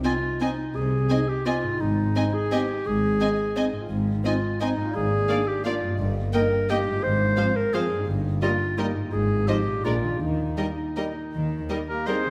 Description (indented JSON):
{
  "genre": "classical, orchestral ballroom waltz",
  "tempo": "153-185 BPM",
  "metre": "3/4",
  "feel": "rubato",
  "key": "Ab major, Eb major from 3.9 s",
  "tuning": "A4 = 439 Hz",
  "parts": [
    { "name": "warm chamber violin section", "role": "melody", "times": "0.0-12.2 s", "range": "D5 to Ab5", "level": "-39 LUFS", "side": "equal", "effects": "none" },
    { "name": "warm chamber violin section", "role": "second line", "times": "0.0-12.2 s", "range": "Bb4 to Eb5", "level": "-36 LUFS", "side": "equal", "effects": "none" },
    { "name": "warm clarinet", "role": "second line", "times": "0.0-12.3 s", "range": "Eb4 to C5", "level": "-29 LUFS", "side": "equal", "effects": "none" },
    { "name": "warm chamber viola section", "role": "accompaniment", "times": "0.0-12.2 s", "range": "F3 to C4", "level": "-34 LUFS", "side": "equal", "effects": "none" },
    { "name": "dark French horn section", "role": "sustained chords", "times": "0.0-12.3 s", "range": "F3 to Eb4", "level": "-36 LUFS", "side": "equal", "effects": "none" },
    { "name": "concert harp", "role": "arpeggios", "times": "0.0-12.3 s", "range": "G2 to Eb5", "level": "-35 LUFS", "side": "equal", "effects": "none" },
    { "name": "warm chamber cello section", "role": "bass", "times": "0.8-11.6 s", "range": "G2 to Eb3", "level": "-32 LUFS", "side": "equal", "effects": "none" },
    { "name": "warm chamber double bass section", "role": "bass", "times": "0.8-11.6 s", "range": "G1 to Eb2", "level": "-32 LUFS", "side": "equal", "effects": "none" },
    { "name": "clear oboe", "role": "second line", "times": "11.9-12.3 s", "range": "Bb4 to C5", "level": "-30 LUFS", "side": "equal", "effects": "none" }
  ],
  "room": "moderate scoring stage reverb, RT60 1.7 s",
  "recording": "none",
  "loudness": "-25 LUFS",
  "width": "mono",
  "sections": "0.0-12.3 A section",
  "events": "none",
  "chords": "0.0 Ab/C; 1.8 Ab; 3.9 Fm7/Ab; 5.0 Bb7/Ab; 6.0 Eb/G; 7.0 Fm/Ab; 8.1 Eb/G; 9.1 Fm7/Ab; 9.8 Bb7; 10.2 Eb",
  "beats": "0.04 0.41 | 0.76 1.10 1.47 | 1.81 2.16 2.52 | 2.87 3.21 3.57 | 3.90 4.25 4.61 | 4.95 5.29 5.65 | 5.99 6.33 6.69 | 7.03 7.38 7.74 | 8.08 8.42 8.79 | 9.13 9.48 9.85 | 10.21 10.58 10.97 | 11.33 11.70 12.08"
}